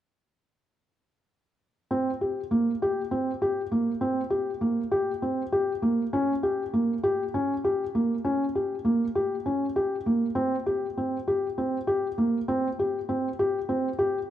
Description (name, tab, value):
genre	contemporary instrumental, contemporary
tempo	199 BPM (eighths)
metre	7/8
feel	straight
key	unclear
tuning	A4 = 440 Hz
part	felt-muted upright piano	solo	1.9-14.2 s	Bb3 to G4	-24 LUFS	equal	none
room	moderate recital hall reverb, RT60 1.6 s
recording	dark, warm production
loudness	-24 LUFS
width	side -11 dB against mid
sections	1.9-14.3 A section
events	none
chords	none